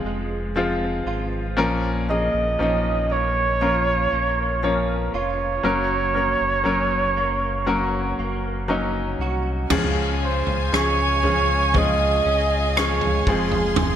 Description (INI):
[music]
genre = pop ballad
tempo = 59 BPM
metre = 4/4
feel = straight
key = Db major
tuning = A4 = 440 Hz
[part]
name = clear baby grand piano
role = accompaniment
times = 0.0-14.0 s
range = Bb2 to Db5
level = -25 LUFS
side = left 2 dB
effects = none
[part]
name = direct-recorded clean electric guitar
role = arpeggios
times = 0.0-14.0 s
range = F2 to Gb4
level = -32 LUFS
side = right 5 dB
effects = ensemble chorus
[part]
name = sub bass with octave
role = bass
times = 0.0-14.0 s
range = F1 to Db2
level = -26 LUFS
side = left 1 dB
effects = none
[part]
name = mellow flugelhorn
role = melody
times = 2.1-14.0 s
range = Ab4 to Eb5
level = -22 LUFS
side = right 3 dB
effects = none
[part]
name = rich studio string section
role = sustained chords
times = 9.7-14.0 s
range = Ab4 to C6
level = -28 LUFS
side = left 2 dB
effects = none
[part]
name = natural country drum kit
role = drums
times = 9.7-14.0 s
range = crash cymbal, kick drum, rim click, toms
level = -24 LUFS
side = right 1 dB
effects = gated reverb
[sound]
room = moderate lush hall reverb, RT60 2.4 s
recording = bright 1980s-style digital production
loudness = -19 LUFS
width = side -9 dB against mid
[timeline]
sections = 0.0-9.7 A section; 9.7-14.0 B section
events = none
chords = 0.0 Fm; 1.6 Bbm; 5.6 Gb; 9.7 Db; 13.3 Fm